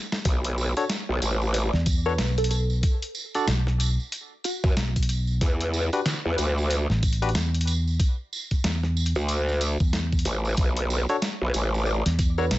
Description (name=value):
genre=glitch hop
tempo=93 BPM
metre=4/4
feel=swing 60% on 16ths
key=B minor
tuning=A4 = 439 Hz
part: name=boom bap sampler-style drum kit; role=drums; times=0.1-12.6 s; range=hi-hat, snare drum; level=-30 LUFS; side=left 1 dB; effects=none
part: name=tambourine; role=percussion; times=0.1-12.6 s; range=none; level=-36 LUFS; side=right 4 dB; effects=none
part: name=growl bass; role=bass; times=0.3-12.0 s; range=A1 to F#2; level=-24 LUFS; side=equal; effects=distortion, chorus, overdrive
part: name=electronic kick drum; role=drums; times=0.3-12.3 s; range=none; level=-23 LUFS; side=equal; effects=overdrive
part: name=barky tine electric piano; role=stabs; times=0.8-12.4 s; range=D4 to D5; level=-29 LUFS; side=left 2 dB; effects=slow stereo tremolo, vintage 12-bit sampler grit, sidechain pumping, digital delay
part: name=woody wave-folded pluck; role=melody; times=1.5-5.1, 11.9-12.6 s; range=F#4 to D5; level=-32 LUFS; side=right 2 dB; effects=analog chorus, cassette tape, digital delay
part: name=fingered electric bass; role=bass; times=1.7-12.6 s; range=A1 to E2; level=-24 LUFS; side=equal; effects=none
room=little or no reverb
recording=nothing above 7.9 kHz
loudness=-22 LUFS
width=side -16 dB against mid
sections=0.0-12.6 A section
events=drum fill 0.0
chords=0.3 B7(no3); 5.4 E7(no3); 10.6 Bm7